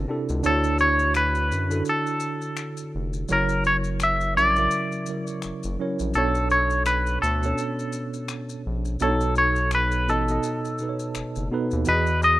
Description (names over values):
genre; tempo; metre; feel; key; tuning
R&B, neo-soul; 84 BPM; 4/4; swing 57% on 16ths; unclear; A4 = 440 Hz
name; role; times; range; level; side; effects
twangy electric guitar; melody; 0.0-12.4 s; A4 to E5; -22 LUFS; equal; tremolo, slapback echo
mellow tine electric piano; accompaniment; 0.0-12.4 s; B2 to E5; -27 LUFS; right 2 dB; medium stereo tremolo
round analog bass; bass; 0.0-12.4 s; E#1 to F#2; -26 LUFS; left 1 dB; none
maracas and finger snaps; percussion; 0.3-12.4 s; none; -38 LUFS; left 7 dB; none
room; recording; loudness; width
small room ambience; rough home demo mix; -21 LUFS; side -16 dB against mid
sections
0.0-12.4 A section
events
none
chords
0.4 Dmaj7; 3.3 F#7b13; 6.1 Bm9; 9.0 B9; 11.9 Emaj7